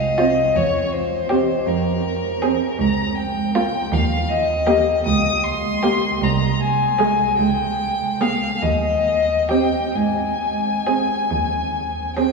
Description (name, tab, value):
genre	classical, slow romantic movement for string quartet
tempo	43-54 BPM (dotted quarters)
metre	6/8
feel	rubato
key	Ab major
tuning	A4 = 441 Hz
part	rich violin	melody	0.0-12.3 s	Bb4 to Eb6	-20 LUFS	left 3 dB	none
part	rich cello	bass	0.0-12.3 s	C2 to Ab2	-23 LUFS	right 3 dB	none
part	rich violin	second line	0.2-12.3 s	F4 to Ab4	-27 LUFS	left 1 dB	none
part	rich viola	accompaniment	0.2-12.3 s	Ab3 to C4	-25 LUFS	right 4 dB	none
room	wet cathedral reverb, RT60 6.1 s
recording	recorded in a church or concert hall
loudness	-17 LUFS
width	side -3 dB against mid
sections	0.0-12.3 A section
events	none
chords	0.0 F5; 0.6 C/E; 1.7 Fm; 2.8 Bbm/Db; 3.9 Eb; 5.1 Bbm69/Db; 6.2 Ab/C; 7.4 Bbm7/Db; 8.6 Eb6; 10.0 Ab